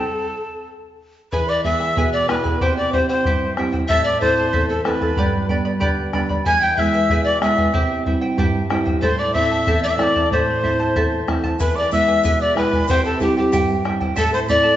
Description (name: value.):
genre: andean folk, Andean ensemble.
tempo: 93 BPM.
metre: 2/4.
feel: straight.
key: A minor.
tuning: A4 = 437 Hz.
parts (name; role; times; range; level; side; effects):
polished pan flute; melody; 0.0-14.8 s; G4 to G#5; -20 LUFS; left 2 dB; none.
breathy bright quena; second line; 0.0-14.8 s; G5 to G#6; -25 LUFS; right 2 dB; none.
charango; accompaniment; 0.0-14.8 s; E4 to B5; -25 LUFS; right 2 dB; none.
nylon-string guitar; accompaniment; 0.0-14.8 s; E2 to G#4; -22 LUFS; right 2 dB; none.
bombo; percussion; 1.3-14.6 s; none; -24 LUFS; left 1 dB; none.
egg shaker; percussion; 11.6-14.6 s; none; -41 LUFS; left 4 dB; none.
room: wet recital hall reverb, RT60 1.7 s.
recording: recorded in a church or concert hall, nothing above 7.7 kHz.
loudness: -16 LUFS.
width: side -12 dB against mid.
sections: 0.0-1.3 A section; 1.3-11.6 B section; 11.6-14.8 B section.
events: stop 0.0-1.3.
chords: 0.0 N.C.; 1.3 E; 2.6 C; 3.9 Am; 5.2 G; 6.5 E; 7.7 C; 9.0 Am; 11.6 E; 12.9 C; 14.2 Am.